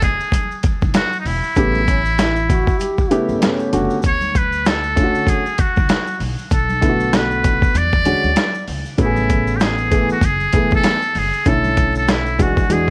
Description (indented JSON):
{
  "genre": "hip hop, jazz-hop",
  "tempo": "97 BPM",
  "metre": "4/4",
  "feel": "swing 57% on 16ths",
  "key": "A major",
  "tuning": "A4 = 440 Hz",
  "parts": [
    { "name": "trumpet with metal mute", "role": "melody", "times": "0.0-12.9 s", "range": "D#4 to D5", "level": "-22 LUFS", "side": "equal", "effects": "analog delay" },
    { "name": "upright bass", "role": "bass", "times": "0.0-12.9 s", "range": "E1 to E2", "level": "-26 LUFS", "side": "equal", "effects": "none" },
    { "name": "dusty soul sampler-style drum kit", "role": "drums", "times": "0.0-12.9 s", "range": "hi-hat, kick drum, snare drum", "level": "-21 LUFS", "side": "equal", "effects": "overdrive" },
    { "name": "congas and maracas", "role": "percussion", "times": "0.0-12.9 s", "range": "none", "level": "-34 LUFS", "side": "equal", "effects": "none" },
    { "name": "dark concert grand piano", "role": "accompaniment", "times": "1.6-12.9 s", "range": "C#3 to G#4", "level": "-22 LUFS", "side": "equal", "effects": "none" },
    { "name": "breathy trombone", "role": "second line", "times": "1.9-3.9 s", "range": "C#4 to G4", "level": "-26 LUFS", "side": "equal", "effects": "none" }
  ],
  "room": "light reverb, studio reverb",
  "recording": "vinyl crackle",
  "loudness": "-17 LUFS",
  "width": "mono",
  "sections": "0.0-12.9 A section",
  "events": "none",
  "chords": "0.0 F#7sus2; 1.6 A9; 4.0 Dmaj7; 6.5 Bm7; 7.7 E13; 9.0 Amaj9; 10.2 F#m11; 11.5 Bm11"
}